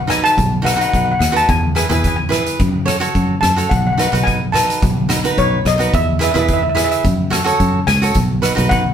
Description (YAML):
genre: calypso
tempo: 108 BPM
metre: 4/4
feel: swing 53% on 16ths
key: B mixolydian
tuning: A4 = 438 Hz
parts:
  - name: steel pan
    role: melody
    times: 0.0-8.9 s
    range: C#5 to A5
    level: -18 LUFS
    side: left 1 dB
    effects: none
  - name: fingered electric bass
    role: bass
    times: 0.0-8.9 s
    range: B1 to F#2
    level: -19 LUFS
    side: equal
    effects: none
  - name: cavaquinho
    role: accompaniment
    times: 0.1-8.8 s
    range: D#4 to C#5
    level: -20 LUFS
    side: right 3 dB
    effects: none
  - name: street-band drum kit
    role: drums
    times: 0.1-8.8 s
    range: hi-hat, kick drum, rim click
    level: -20 LUFS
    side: equal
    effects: none
  - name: congas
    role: percussion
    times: 0.1-8.7 s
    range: none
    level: -27 LUFS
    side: left 3 dB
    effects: none
room: wet studio reverb, RT60 0.7 s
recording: band playing live in one room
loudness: -13 LUFS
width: side -8 dB against mid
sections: 0.0-8.9 A section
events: none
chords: 0.0 B; 1.5 E; 2.6 F#m; 3.7 B; 5.9 E; 7.0 F#m; 8.2 B